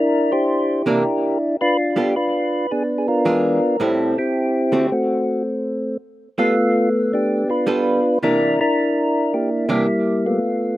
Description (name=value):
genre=jazz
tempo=109 BPM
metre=4/4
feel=swing 67% on 8ths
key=G mixolydian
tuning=A4 = 440 Hz
part: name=percussive tonewheel organ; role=melody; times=0.0-10.8 s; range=G3 to C5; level=-17 LUFS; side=equal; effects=slow rotary speaker
part: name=archtop guitar, miked and amplified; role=accompaniment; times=0.9-9.9 s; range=A2 to A4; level=-22 LUFS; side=right 2 dB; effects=none
room=little or no reverb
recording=recorded outdoors, with no room sound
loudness=-17 LUFS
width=side -15 dB against mid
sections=0.0-6.0 A section; 6.0-10.8 A section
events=none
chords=0.0 C9; 1.6 G9; 2.7 E7b9; 3.8 Am7; 4.9 Am6; 6.0 G9; 8.2 C9